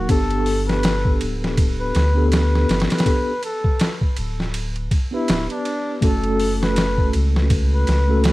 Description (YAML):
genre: trip hop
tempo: 81 BPM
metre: 4/4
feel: swing 58% on 16ths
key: unclear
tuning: A4 = 439 Hz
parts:
  - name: trumpet with bucket mute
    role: melody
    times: 0.0-8.3 s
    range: D4 to B4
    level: -26 LUFS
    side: left 1 dB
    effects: vintage 12-bit sampler grit, tape echo
  - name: mellow tine electric piano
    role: accompaniment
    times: 0.0-8.3 s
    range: A3 to B4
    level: -24 LUFS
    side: equal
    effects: fast stereo tremolo
  - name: soft dub sub bass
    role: bass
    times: 0.0-8.3 s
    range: D1 to D2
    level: -20 LUFS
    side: equal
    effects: none
  - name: boom bap sampler-style drum kit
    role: drums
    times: 0.1-8.3 s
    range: hi-hat, kick drum, ride cymbal, snare drum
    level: -21 LUFS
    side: equal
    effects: studio reverb
room: little or no reverb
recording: vinyl crackle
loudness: -17 LUFS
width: side -18 dB against mid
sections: 0.0-8.3 A section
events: none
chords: 0.1 Gadd9; 6.0 F#m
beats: | 0.10 0.84 1.58 2.32 | 3.06 3.80 4.54 5.28 | 6.02 6.76 7.50 8.24